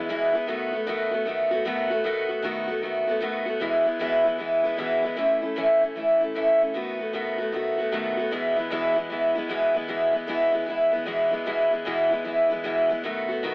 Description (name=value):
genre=rock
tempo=153 BPM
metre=4/4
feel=swing 64% on 8ths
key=E major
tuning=A4 = 440 Hz
part: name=picked steel-string acoustic guitar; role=solo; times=0.0-13.5 s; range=E2 to F#4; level=-22 LUFS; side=equal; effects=slapback echo
room=light reverb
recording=telephone sound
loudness=-22 LUFS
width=side -26 dB against mid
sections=0.0-9.9 A section; 9.9-13.5 B section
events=none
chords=0.5 B7; 3.6 E; 5.2 A; 6.7 B7; 8.3 E; 13.0 B7